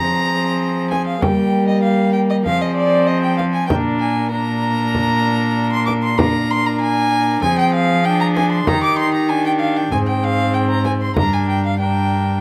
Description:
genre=classical, renaissance-style consort dance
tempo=96 BPM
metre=4/4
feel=straight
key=F dorian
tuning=A4 = 440 Hz
part: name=mellow cornet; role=melody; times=0.0-12.4 s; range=G4 to Bb4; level=-28 LUFS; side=equal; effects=none
part: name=warm violin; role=second line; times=0.0-12.4 s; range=D5 to D6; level=-22 LUFS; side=equal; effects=none
part: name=rich viola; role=accompaniment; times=0.0-12.4 s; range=Bb3 to Eb4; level=-24 LUFS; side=equal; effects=none
part: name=dark cello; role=bass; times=0.0-12.4 s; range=G2 to G3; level=-22 LUFS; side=equal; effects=none
part: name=frame drum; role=percussion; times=0.9-11.5 s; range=none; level=-24 LUFS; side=equal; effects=none
room=light reverb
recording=close, detailed microphones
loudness=-17 LUFS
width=mono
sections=0.0-12.4 A section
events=none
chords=0.0 Fm; 1.2 Gm; 2.5 Fm; 3.7 Bb; 7.4 Fm; 8.7 Eb; 9.9 Ab; 11.2 Gm

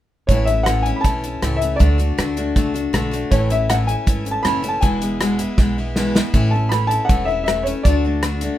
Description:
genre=honky-tonk and classic country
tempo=159 BPM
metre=4/4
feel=straight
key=A major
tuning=A4 = 436 Hz
part: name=clear upright piano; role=melody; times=0.3-8.6 s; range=C#5 to B5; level=-22 LUFS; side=left 1 dB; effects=none
part: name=picked steel-string acoustic guitar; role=accompaniment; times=0.3-8.6 s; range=E2 to F#4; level=-22 LUFS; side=left 2 dB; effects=none
part: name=upright bass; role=bass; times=0.3-8.5 s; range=E1 to D2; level=-22 LUFS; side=right 1 dB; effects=none
part: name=natural country drum kit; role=drums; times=0.3-8.5 s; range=hi-hat, kick drum, rim click, snare drum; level=-19 LUFS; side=right 1 dB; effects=none
room=light reverb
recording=minimal, uncompressed stereo recording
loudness=-16 LUFS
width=side -13 dB against mid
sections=0.3-6.3 A section; 6.3-8.6 B section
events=drum fill 5.6-6.3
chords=0.3 A; 1.8 D; 3.3 A; 4.8 E; 6.3 A; 7.8 D

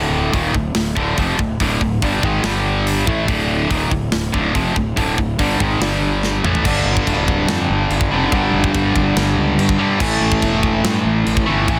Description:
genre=heavy metal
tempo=143 BPM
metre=4/4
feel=straight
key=D minor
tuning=A4 = 440 Hz
part: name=distorted electric guitar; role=riff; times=0.0-11.8 s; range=D2 to A3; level=-20 LUFS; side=equal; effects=overdrive
part: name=fuzz fingered electric bass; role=bass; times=0.0-11.8 s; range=D1 to G2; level=-24 LUFS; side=equal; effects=overdrive
part: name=tight metal drum kit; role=drums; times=0.3-11.8 s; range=china cymbal, crash cymbal, hi-hat, kick drum, snare drum, toms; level=-24 LUFS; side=equal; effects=soft clipping on kick
room=light reverb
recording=dense, heavily limited modern master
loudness=-17 LUFS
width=mono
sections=0.0-6.6 A section; 6.6-11.8 B section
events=drum fill 6.2-6.6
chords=0.0 Dm; 2.4 G5; 3.1 Dm; 5.8 G5; 6.4 A5; 6.6 G5; 10.0 A5

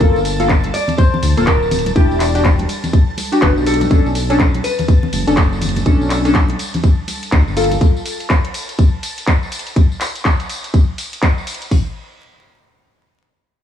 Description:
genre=deep house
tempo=123 BPM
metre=4/4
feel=swing 60% on 16ths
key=unclear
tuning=A4 = 441 Hz
part: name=hollow-body jazz guitar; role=melody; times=0.0-5.8 s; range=G4 to D5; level=-22 LUFS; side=left 1 dB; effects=tape echo
part: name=warm analog keys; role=stabs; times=0.0-7.7 s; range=Bb3 to A4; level=-18 LUFS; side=left 1 dB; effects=chorus, phaser, sidechain pumping, tape echo
part: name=round analog bass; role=bass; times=0.0-7.8 s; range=D1 to D2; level=-19 LUFS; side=left 1 dB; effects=sidechain pumping
part: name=house drum kit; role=drums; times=0.0-11.9 s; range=hi-hat, kick drum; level=-13 LUFS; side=equal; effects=none
part: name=house drum kit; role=drums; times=0.0-11.7 s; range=handclaps, hi-hat, ride cymbal, tambourine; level=-23 LUFS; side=equal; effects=none
part: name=analog string pad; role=texture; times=0.0-9.8 s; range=A5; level=-32 LUFS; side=right 2 dB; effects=ensemble chorus
part: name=congas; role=percussion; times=0.6-7.8 s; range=none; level=-25 LUFS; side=equal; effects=sidechain pumping on perc
room=little or no reverb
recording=vinyl crackle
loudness=-13 LUFS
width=side -9 dB against mid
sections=0.0-11.7 A section; 11.7-13.6 B section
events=drop 0.0-11.7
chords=0.0 Gm9; 2.0 Em9; 3.9 Bm9; 7.6 Gsus2; 9.8 N.C.

